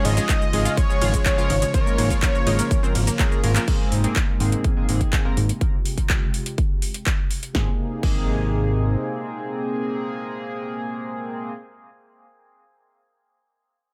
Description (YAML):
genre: progressive house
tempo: 124 BPM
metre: 4/4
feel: straight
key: Ab major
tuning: A4 = 440 Hz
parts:
  - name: unison lead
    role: melody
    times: 0.0-3.2 s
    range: Db5 to Eb5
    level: -30 LUFS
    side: equal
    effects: dub echo
  - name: soft supersaw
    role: second line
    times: 0.0-3.2 s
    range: Db5 to Eb5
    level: -33 LUFS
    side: equal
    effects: sidechain pumping, dub echo
  - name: warm analog pad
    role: sustained chords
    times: 0.0-11.0 s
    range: C3 to Ab4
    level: -33 LUFS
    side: equal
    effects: chorus, sidechain pumping
  - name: analog pluck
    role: arpeggios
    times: 0.0-3.6 s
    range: Ab3 to Ab4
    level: -34 LUFS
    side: equal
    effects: analog chorus, cassette tape, sidechain pumping, dub echo
  - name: chorused polysynth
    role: stabs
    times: 0.0-11.5 s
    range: Ab2 to Bb4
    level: -31 LUFS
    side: equal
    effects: sidechain pumping, dub echo
  - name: fat analog bass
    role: bass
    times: 0.0-9.0 s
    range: Ab1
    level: -24 LUFS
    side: equal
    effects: tube saturation, sidechain pumping
  - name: deep house drum kit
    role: drums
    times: 0.0-8.2 s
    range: crash cymbal, handclaps, hi-hat, ride cymbal, shaker, snare drum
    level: -30 LUFS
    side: equal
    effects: overdrive
  - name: electronic kick drum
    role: drums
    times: 0.3-8.2 s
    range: none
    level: -24 LUFS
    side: equal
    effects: none
room: digital ambience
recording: none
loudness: -22 LUFS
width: mono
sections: 0.0-3.7 A section; 3.7-7.5 B section; 7.5-11.4 C section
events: drop 0.0-3.7; drum fill 3.2-3.7; filter sweep on analog synth pad 3.7-7.5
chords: 0.0 Db/Ab; 3.7 Abadd9; 5.6 Fmadd9; 7.5 Abadd9